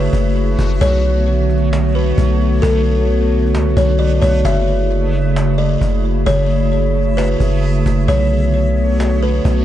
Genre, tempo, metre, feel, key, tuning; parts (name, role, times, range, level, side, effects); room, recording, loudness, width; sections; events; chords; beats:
hip hop, atmospheric cloud-rap; 132 BPM; 4/4; half-time; B dorian; A4 = 445 Hz
buzzing kalimba; melody; 0.0-9.6 s; A4 to E5; -21 LUFS; left 1 dB; low-pass filter, digital delay
warbly tape-like pad; sustained chords; 0.0-9.6 s; C#3 to C#5; -18 LUFS; right 1 dB; chorus, built-in reverb
long sustained 808-style bass; bass; 0.0-9.6 s; F#1 to C#2; -16 LUFS; equal
backwards swelling texture; texture; 0.0-9.6 s; A3 to E5; -29 LUFS; right 1 dB; built-in reverb
cajon; drums; 0.1-9.6 s; -27 LUFS; equal
small room ambience; dark, warm production, nothing above 11.0 kHz; -13 LUFS; side -12 dB against mid
0.0-9.6 A section
0.0 F#m9; 0.8 Bm9; 4.4 F#m9; 8.1 Bm9
0.36 | 0.81 1.27 1.72 2.18 | 2.63 3.08 3.54 4.00 | 4.45 4.90 5.36 5.81 | 6.27 6.72 7.18 7.63 | 8.09 8.54 8.99 9.45